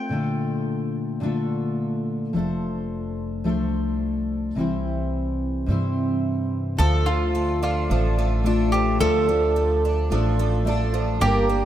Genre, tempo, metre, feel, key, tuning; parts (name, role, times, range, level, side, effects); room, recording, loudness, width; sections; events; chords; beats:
acoustic folk duo or small band; 108 BPM; 4/4; straight; D minor; A4 = 442 Hz
mandolin; melody; 0.0-2.0, 6.8-11.7 s; F4 to G5; -24 LUFS; right 2 dB
picked steel-string acoustic guitar; accompaniment; 0.0-11.7 s; Bb2 to C5; -25 LUFS; left 2 dB; wide subtle chorus
upright bass; bass; 2.3-11.7 s; F1 to G2; -24 LUFS; equal
picked twelve-string acoustic guitar; arpeggios; 6.8-11.7 s; F3 to D4; -28 LUFS; right 4 dB; analog chorus, analog delay
moderate plate reverb, RT60 3.5 s; dreamy mix soaked in reverb; -21 LUFS; side -11 dB against mid
0.0-6.8 A section; 6.8-11.7 B section
0.1 Bbmaj7; 2.3 F6; 4.6 C; 6.8 Dm
| 0.12 0.68 1.23 1.79 | 2.35 2.90 3.46 4.02 | 4.58 5.13 5.69 6.24 | 6.80 7.35 7.91 8.46 | 9.01 9.56 10.12 10.67 | 11.22